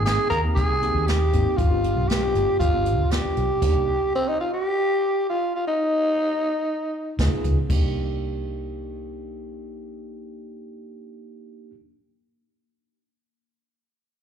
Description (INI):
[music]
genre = straight-eighth soul blues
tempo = 118 BPM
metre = 4/4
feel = straight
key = C minor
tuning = A4 = 440 Hz
[part]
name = growling tenor saxophone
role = melody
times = 0.0-7.2 s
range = C4 to Bb4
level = -22 LUFS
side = equal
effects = slapback echo
[part]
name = mellow tine electric piano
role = accompaniment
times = 0.0-3.9, 7.2-11.7 s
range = Bb3 to Ab4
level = -31 LUFS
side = moving between left 2 dB and right 7 dB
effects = auto-pan, slapback echo
[part]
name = vintage muted fingered electric bass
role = bass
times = 0.0-4.0, 7.2-11.7 s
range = G1 to Eb2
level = -25 LUFS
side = equal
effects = none
[part]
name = jazz brush drum kit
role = drums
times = 0.1-3.7, 7.2-7.8 s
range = crash cymbal, hi-hat, kick drum, snare drum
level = -26 LUFS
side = equal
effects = none
[sound]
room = light reverb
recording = live gig heard through the venue's PA, club reverb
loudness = -20 LUFS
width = side -8 dB against mid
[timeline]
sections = 0.0-7.7 A section; 7.7-11.8 B section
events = none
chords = 0.0 Abmaj7; 1.6 G7; 3.6 Cm7; 7.2 Db7; 7.7 Cm7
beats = 0.06 0.57 1.07 | 1.58 2.09 2.60 3.11 | 3.62 4.13 4.64 5.15 | 5.66 6.17 6.68 7.19 | 7.70 8.20 8.71 9.22 | 9.73 10.24 10.75 11.26